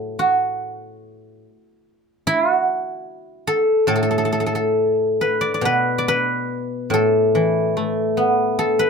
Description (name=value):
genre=chinese traditional, Chinese solo plucked strings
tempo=72 BPM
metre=2/4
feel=rubato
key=unclear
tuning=A4 = 437 Hz
part: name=guzheng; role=solo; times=0.0-8.9 s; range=A2 to D5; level=-17 LUFS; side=equal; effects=none
room=moderate small room reverb, RT60 0.5 s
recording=none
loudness=-17 LUFS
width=side -5 dB against mid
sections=0.0-8.9 A section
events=none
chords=none